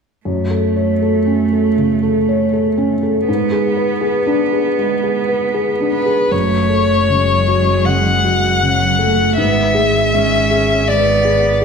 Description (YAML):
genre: neoclassical piano and strings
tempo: 79 BPM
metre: 4/4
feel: rubato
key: F# minor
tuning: A4 = 438 Hz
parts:
  - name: rich cello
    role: second line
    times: 0.3-11.6 s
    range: F#3 to C#4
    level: -19 LUFS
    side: right 6 dB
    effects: none
  - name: felt-muted upright piano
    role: accompaniment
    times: 0.3-11.6 s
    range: F#2 to C#5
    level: -17 LUFS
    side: left 1 dB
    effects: none
  - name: rich violin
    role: melody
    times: 5.9-11.6 s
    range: B4 to F#5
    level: -15 LUFS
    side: left 3 dB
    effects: none
  - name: warm double bass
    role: bass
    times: 6.3-11.6 s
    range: F#1 to G#1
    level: -20 LUFS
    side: equal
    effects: none
room: wet recital hall reverb, RT60 1.4 s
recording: recorded in a church or concert hall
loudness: -13 LUFS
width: side -5 dB against mid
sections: 0.3-6.3 A section; 6.3-11.6 B section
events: none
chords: 0.3 F#m; 3.3 G#dim; 6.3 F#m; 9.4 G#dim